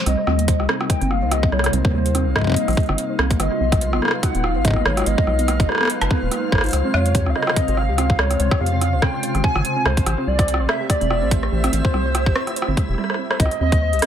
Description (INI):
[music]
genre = IDM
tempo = 144 BPM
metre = 4/4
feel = swing 56% on 16ths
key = C phrygian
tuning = A4 = 444 Hz
[part]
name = glassy FM pad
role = sustained chords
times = 0.0-14.1 s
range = C3 to Cb5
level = -27 LUFS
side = equal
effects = ensemble chorus, built-in reverb
[part]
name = warbly nostalgic lead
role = melody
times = 0.1-14.1 s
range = Cb5 to Ab5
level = -24 LUFS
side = left 1 dB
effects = analog chorus, dub echo
[part]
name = warbly dusty pluck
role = arpeggios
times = 0.1-14.1 s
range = G3 to C5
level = -28 LUFS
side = right 4 dB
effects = chorus, vintage 12-bit sampler grit, dub echo
[part]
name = rubbery square bass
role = bass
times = 0.1-14.0 s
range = Eb1 to F2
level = -21 LUFS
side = equal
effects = none
[part]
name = booming analog drum machine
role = drums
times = 0.1-14.1 s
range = hi-hat, rim click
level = -24 LUFS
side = right 1 dB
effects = dub echo
[part]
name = backwards swelling texture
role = texture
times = 1.3-13.0 s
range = E4 to F5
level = -33 LUFS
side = left 1 dB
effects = built-in reverb, sidechain pumping
[part]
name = electronic kick drum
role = drums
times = 0.5-13.8 s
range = none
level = -20 LUFS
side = equal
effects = none
[sound]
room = light reverb, digital ambience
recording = echo-heavy mix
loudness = -17 LUFS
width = side -9 dB against mid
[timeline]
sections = 0.0-13.4 A section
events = drum fill 13.0-13.4; band accent 13.3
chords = 0.1 Cm7; 3.4 Abm7; 6.7 Dbmaj7; 10.1 Am7; 13.4 Cm7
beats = | 0.06 0.48 0.90 1.31 | 1.73 2.15 2.56 2.98 | 3.40 3.81 4.23 4.65 | 5.06 5.48 5.90 6.31 | 6.73 7.15 7.56 7.98 | 8.40 8.81 9.23 9.65 | 10.06 10.48 10.90 11.31 | 11.73 12.15 12.56 12.98 | 13.40 13.81